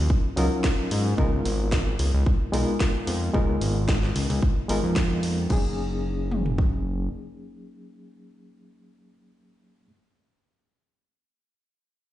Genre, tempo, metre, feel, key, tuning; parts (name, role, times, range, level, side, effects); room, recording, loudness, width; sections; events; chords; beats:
nu-disco, nu disco; 111 BPM; 4/4; swing 54% on 16ths; F# major; A4 = 436 Hz
barky reed electric piano; accompaniment; 0.0-9.9 s; F#3 to A#4; -29 LUFS; left 1 dB; overdrive, medium tremolo, digital delay
fat analog bass; bass; 0.0-7.1 s; F#1 to G#2; -25 LUFS; equal
house drum kit; drums; 0.1-6.7 s; kick drum, toms; -24 LUFS; equal
house drum kit; drums; 0.4-5.6 s; crash cymbal, hi-hat, snare drum; -33 LUFS; equal
little or no reverb; played on a big sound system in a bare room, stone room reverb, nothing above 10.4 kHz; -22 LUFS; side -14 dB against mid
0.0-5.5 A section; 5.5-9.8 B section
0.0 D#m9; 1.2 C#13; 5.5 F#69
0.10 0.64 | 1.18 1.72 2.26 2.80 | 3.34 3.88 4.42 4.96 | 5.50 6.04 6.58 7.13 | 7.67 8.21 8.75 9.29